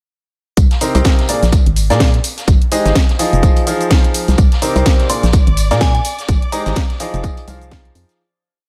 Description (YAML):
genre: piano house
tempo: 126 BPM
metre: 4/4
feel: swing 58% on 16ths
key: F dorian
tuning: A4 = 440 Hz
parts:
  - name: organ-like FM bass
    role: bass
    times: 0.6-8.1 s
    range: F1 to Bb2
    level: -18 LUFS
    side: equal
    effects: sidechain pumping
  - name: electronic kick drum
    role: drums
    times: 0.6-7.8 s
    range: none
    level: -15 LUFS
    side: equal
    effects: overdrive
  - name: house drum kit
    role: drums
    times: 0.6-8.2 s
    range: hi-hat, shaker, snare drum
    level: -24 LUFS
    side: equal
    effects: overdrive
  - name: street-band drum kit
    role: drums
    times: 0.6-8.2 s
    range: hi-hat, snare drum, tambourine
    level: -31 LUFS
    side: equal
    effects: high-pass filter on hats, high-pass filter on snare, high-pass filter on perc, high-pass filter on room
  - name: bright upright piano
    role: riff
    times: 0.8-8.2 s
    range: Bb2 to F5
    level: -20 LUFS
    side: equal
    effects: sidechain pumping, delay
  - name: dark symphonic violin section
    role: sustained chords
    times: 4.4-8.2 s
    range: D5 to D6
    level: -32 LUFS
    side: equal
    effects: sidechain pumping
  - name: glassy synth bell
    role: melody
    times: 5.1-6.7 s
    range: Ab5 to C6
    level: -26 LUFS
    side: equal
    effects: chorus, phaser, delay
room: studio ambience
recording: none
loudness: -14 LUFS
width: mono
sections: 0.6-8.2 drop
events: drop 0.6-8.2; fade-out 5.7-8.2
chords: 0.6 Cm7; 1.3 Bb7; 2.2 Abmaj7; 3.2 Fm7; 4.4 Cm7; 5.1 Bb7; 6.0 Abmaj7; 7.0 Fm7